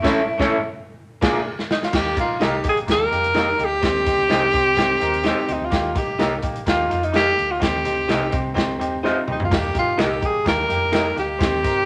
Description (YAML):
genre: uptempo 1960s-style soul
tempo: 127 BPM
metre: 4/4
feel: straight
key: Eb major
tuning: A4 = 442 Hz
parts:
  - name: breathy tenor saxophone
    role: melody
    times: 0.0-11.9 s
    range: Eb4 to Bb4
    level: -23 LUFS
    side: equal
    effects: none
  - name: bright baby grand piano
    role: accompaniment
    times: 0.0-11.8 s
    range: A3 to Bb4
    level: -29 LUFS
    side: equal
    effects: none
  - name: electric guitar through a small old amp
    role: stabs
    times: 0.0-11.1 s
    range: Bb3 to Eb5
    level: -25 LUFS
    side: equal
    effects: none
  - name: vintage muted fingered electric bass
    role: bass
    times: 0.0-11.8 s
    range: G1 to F2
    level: -33 LUFS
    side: equal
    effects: none
  - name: swinging big-band drum kit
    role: drums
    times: 0.0-11.8 s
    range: crash cymbal, hi-hat, kick drum, snare drum, splash cymbal, toms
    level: -27 LUFS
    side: equal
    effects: none
  - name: finger snap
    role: percussion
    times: 10.0-11.0 s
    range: none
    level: -35 LUFS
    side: equal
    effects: none
room: moderate studio reverb, RT60 0.6 s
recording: none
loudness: -20 LUFS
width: mono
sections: 0.0-1.9 A section; 1.9-11.9 B section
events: band accent 0.0-1.9; drum fill 1.0-1.9, 9.0-9.5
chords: 0.0 A; 1.0 Bb7; 1.9 Eb; 3.8 Cm; 5.7 Eb; 7.6 Cm; 9.5 Eb